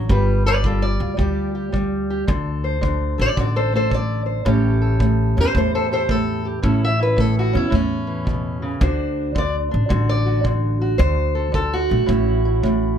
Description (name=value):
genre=acoustic country blues, solo or duo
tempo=110 BPM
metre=4/4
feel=swing 67% on 8ths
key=unclear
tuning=A4 = 441 Hz
part: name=fingerpicked steel-string acoustic guitar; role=melody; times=0.0-13.0 s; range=A2 to E5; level=-20 LUFS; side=equal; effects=none
part: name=upright bass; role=bass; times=0.0-13.0 s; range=G1 to E2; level=-21 LUFS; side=equal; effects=none
part: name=kick drum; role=drums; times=0.1-12.8 s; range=none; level=-25 LUFS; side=right 1 dB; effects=none
room=little or no reverb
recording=none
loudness=-17 LUFS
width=side -8 dB against mid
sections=0.0-13.0 A section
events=steel-string acoustic guitar solo 0.0-13.0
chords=0.1 G7(no3); 2.3 D7(no3); 4.5 A7; 8.8 D7; 12.1 A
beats=| 0.10 0.64 1.19 1.73 | 2.28 2.82 3.37 3.91 | 4.46 5.00 5.55 6.09 | 6.64 7.18 7.73 8.27 | 8.82 9.36 9.91 10.45 | 11.00 11.54 12.09 12.63